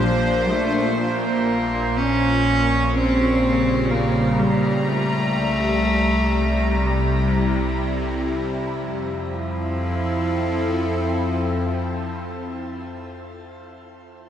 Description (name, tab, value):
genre	ambient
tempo	free time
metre	none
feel	none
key	F major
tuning	A4 = 440 Hz
part	warm cello	melody	0.0-12.5 s	F3 to Db4	-23 LUFS	right 1 dB	diffuse ambient delay
part	evolving wavetable pad	sustained chords	0.0-12.9 s	Bb2 to Bb5	-22 LUFS	left 1 dB	phaser, built-in reverb
part	deep rumbling drone	bass	0.0-11.7 s	Bb1 to F2	-27 LUFS	equal	built-in reverb
room	wet shimmer reverb, RT60 6.7 s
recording	none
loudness	-19 LUFS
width	side -9 dB against mid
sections	0.0-8.8 A section; 8.8-12.7 B section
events	none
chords	0.0 Bbmaj9; 1.0 Bbm6; 4.9 C7; 8.8 Fmaj7